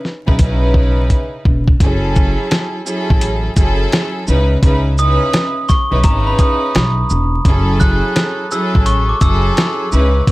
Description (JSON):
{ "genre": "hip hop, boom-bap hip-hop", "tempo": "85 BPM", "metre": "4/4", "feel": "swing 63% on 16ths", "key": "F# minor", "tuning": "A4 = 436 Hz", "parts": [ { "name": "dusty soul sampler-style drum kit", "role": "drums", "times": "0.0-10.3 s", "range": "hi-hat, kick drum, shaker, snare drum", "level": "-13 LUFS", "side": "equal", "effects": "vintage 12-bit sampler grit" }, { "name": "warm studio string section", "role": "accompaniment", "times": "0.3-10.3 s", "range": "C#3 to B4", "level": "-19 LUFS", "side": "equal", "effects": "cassette tape" }, { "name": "upright bass", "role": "bass", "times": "0.3-10.3 s", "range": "E1 to C#2", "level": "-15 LUFS", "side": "equal", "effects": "none" }, { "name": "glockenspiel with soft plastic mallets", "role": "melody", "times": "5.0-10.2 s", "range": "A#5 to F#6", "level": "-19 LUFS", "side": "equal", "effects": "none" } ], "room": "little or no reverb", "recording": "vinyl crackle", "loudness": "-12 LUFS", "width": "side -19 dB against mid", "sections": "0.0-1.8 A section; 1.8-10.3 B section", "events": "drum fill 1.1-1.8", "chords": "0.0 C#m9; 1.8 F#m9; 4.3 C#m9; 7.5 F#m9" }